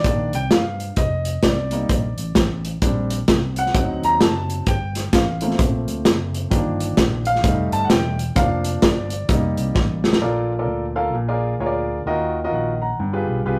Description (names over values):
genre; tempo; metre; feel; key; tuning
uptempo gospel; 130 BPM; 4/4; swing 62% on 8ths; Bb major; A4 = 442 Hz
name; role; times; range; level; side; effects
warm grand piano; accompaniment; 0.0-13.6 s; G2 to Bb5; -25 LUFS; equal; none
fingered electric bass; bass; 0.0-13.6 s; E1 to G2; -28 LUFS; equal; none
natural country drum kit; drums; 0.0-10.2 s; hi-hat, kick drum, snare drum; -21 LUFS; equal; none
room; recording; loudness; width
moderate studio reverb, RT60 0.6 s; rough rehearsal-room recording, warm saturation; -20 LUFS; mono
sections
0.0-10.2 A section; 10.2-13.6 B section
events
grand piano solo 0.0-10.2; drum fill 9.8-10.2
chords
0.0 Cm9; 1.0 F7sus4; 2.8 Bb69; 3.7 D7b9; 4.7 Gm11; 6.5 Ebmaj9/G; 7.4 F7; 8.4 Bb/F; 9.3 F9sus4; 10.2 Bbmaj7; 11.1 Bb7; 12.1 Ebmadd9; 13.0 G7b9